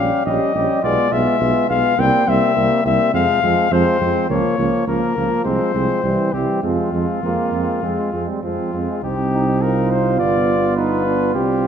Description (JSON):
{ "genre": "classical, brass quintet", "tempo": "104 BPM", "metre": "4/4", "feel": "straight", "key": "F minor", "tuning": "A4 = 440 Hz", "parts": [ { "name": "warm cornet", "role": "melody", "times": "0.0-11.7 s", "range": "F4 to G5", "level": "-20 LUFS", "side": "left 7 dB", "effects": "none" }, { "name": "mellow trumpet", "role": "second line", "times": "0.0-11.7 s", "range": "Bb3 to G4", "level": "-25 LUFS", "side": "right 7 dB", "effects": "none" }, { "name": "clear trombone", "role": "accompaniment", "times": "0.0-11.7 s", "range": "E3 to F4", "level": "-24 LUFS", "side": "right 5 dB", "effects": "none" }, { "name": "mellow French horn", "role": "accompaniment", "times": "0.0-11.7 s", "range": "G3 to Db4", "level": "-22 LUFS", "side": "left 2 dB", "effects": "none" }, { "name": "mellow tuba", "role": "bass", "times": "0.0-11.7 s", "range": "G1 to F2", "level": "-22 LUFS", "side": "right 4 dB", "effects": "none" } ], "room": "moderate scoring stage reverb, RT60 1.6 s", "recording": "none", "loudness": "-15 LUFS", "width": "side -8 dB against mid", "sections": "0.0-9.0 A section; 9.0-11.7 B section", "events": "none", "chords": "0.0 Gm7b5/Bb; 0.8 Bdim7; 2.0 C7; 3.1 Fm; 4.3 Bbm/Db; 5.5 Fm/C; 6.0 C; 6.6 Fm; 9.0 Cm; 10.2 G7", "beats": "0.27 0.84 1.42 | 1.99 2.57 3.14 3.72 | 4.30 4.88 5.46 6.04 | 6.64 7.24 7.84 8.44 | 9.04 9.61 10.19 10.77 | 11.35" }